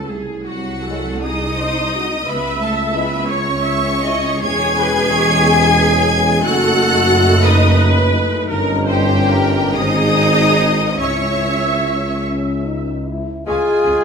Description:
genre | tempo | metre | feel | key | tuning
classical | 45-61 BPM (dotted quarters) | 6/8 | rubato | C# minor | A4 = 440 Hz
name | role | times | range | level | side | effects
rich studio violin section | melody | 0.0-13.9 s | F5 to G#6 | -22 LUFS | left 1 dB | none
clear symphonic violin section | second line | 0.0-14.0 s | F#4 to G#5 | -21 LUFS | left 4 dB | none
bright symphonic viola section | accompaniment | 0.0-13.9 s | Db4 to E5 | -21 LUFS | right 2 dB | none
dark tuba | bass | 0.0-13.2 s | E1 to C#2 | -22 LUFS | right 2 dB | none
rich symphonic cello section | bass | 0.0-13.9 s | Db2 to G#4 | -22 LUFS | left 1 dB | none
rich symphonic double bass section | bass | 0.0-14.0 s | G#1 to G2 | -21 LUFS | right 2 dB | none
dark French horn section | sustained chords | 0.9-14.0 s | G#3 to F#4 | -24 LUFS | left 4 dB | none
mellow hollow small flute group | second line | 13.5-14.0 s | F5 | -27 LUFS | left 9 dB | none
warm clarinet | second line | 13.5-14.0 s | Ab4 | -17 LUFS | left 4 dB | none
warm cor anglais | second line | 13.5-14.0 s | F4 | -24 LUFS | equal | none
mellow bassoon | accompaniment | 13.5-14.0 s | Ab3 | -22 LUFS | right 5 dB | none
clear trumpet | stabs | 13.5-14.0 s | Ab4 | -21 LUFS | right 2 dB | none
room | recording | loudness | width
wet recital hall reverb, RT60 1.6 s | minimal, uncompressed stereo recording | -13 LUFS | side -6 dB against mid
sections
0.0-13.5 A section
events
none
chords
0.1 G#7/B#; 2.3 C#m; 4.4 C#m/E; 6.4 D#dim/F#; 8.5 D#7/G; 9.8 G#7; 11.0 C#m; 13.5 Db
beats
| 0.10 1.24 | 2.27 3.28 | 4.42 5.44 | 6.44 7.44 | 8.49 9.76 | 11.00 12.26 | 13.48

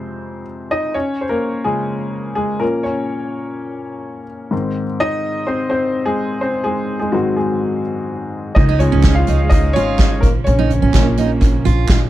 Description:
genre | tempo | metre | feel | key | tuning
piano-driven pop | 126 BPM | 4/4 | straight | Db major | A4 = 439 Hz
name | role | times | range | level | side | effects
clear upright piano | accompaniment | 0.0-12.1 s | F2 to F5 | -19 LUFS | left 2 dB | none
clear studio string section | sustained chords | 8.6-12.1 s | Db3 to Bb3 | -24 LUFS | right 6 dB | none
upright bass | bass | 8.6-12.1 s | Ab1 to Db2 | -16 LUFS | equal | none
soft-mallet drum kit | drums | 8.6-12.0 s | crash cymbal, hi-hat, kick drum, snare drum, toms | -15 LUFS | equal | none
fingerpicked steel-string acoustic guitar | riff | 8.7-12.0 s | Db4 to F4 | -20 LUFS | right 9 dB | none
group handclap | percussion | 9.0-12.0 s | none | -32 LUFS | right 7 dB | none
room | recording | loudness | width
little or no reverb | none | -15 LUFS | side -14 dB against mid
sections
0.0-8.6 A section; 8.6-12.1 B section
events
upright piano solo 0.0-8.6, 8.6-12.1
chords
0.0 Fm; 0.9 Db; 2.6 Bbm; 4.5 Ab; 8.6 Db; 10.2 Bbm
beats
0.47 | 0.95 1.42 1.90 2.38 | 2.85 3.33 3.81 4.28 | 4.76 5.24 5.71 6.19 | 6.66 7.14 7.62 8.09 | 8.57 9.04 9.52 9.99 | 10.47 10.95 11.42 11.90

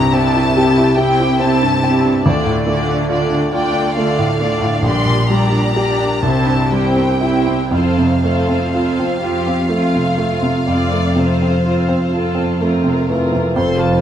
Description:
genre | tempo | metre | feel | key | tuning
classical, romantic movement for piano and orchestra | 38-48 BPM (dotted quarters) | 12/8 | rubato | F major | A4 = 441 Hz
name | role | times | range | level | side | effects
clear concert grand piano | melody | 0.0-14.0 s | Bb1 to G4 | -17 LUFS | right 1 dB | none
rich studio violin section | melody | 0.0-14.0 s | F5 to C6 | -22 LUFS | left 2 dB | none
rich chamber violin section | second line | 0.0-14.0 s | F4 to D5 | -24 LUFS | left 3 dB | none
rich chamber viola section | accompaniment | 0.0-14.0 s | G3 to A4 | -22 LUFS | right 1 dB | none
rich studio cello section | bass | 0.0-14.0 s | F2 to D3 | -19 LUFS | equal | none
warm bassoon | accompaniment | 13.1-14.0 s | E3 to F3 | -18 LUFS | right 1 dB | none
clear chamber double bass section | bass | 13.6-14.0 s | F1 | -20 LUFS | equal | none
room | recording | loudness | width
moderate scoring stage reverb, RT60 1.9 s | close, detailed microphones | -13 LUFS | side -10 dB against mid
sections
0.0-13.6 A section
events
none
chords
0.0 C; 2.2 Dm; 4.8 Gm/Bb; 6.2 C; 7.7 F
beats
0.98 | 2.25 3.53 4.84 6.23 | 7.72 9.23 10.67 12.12 | 13.56

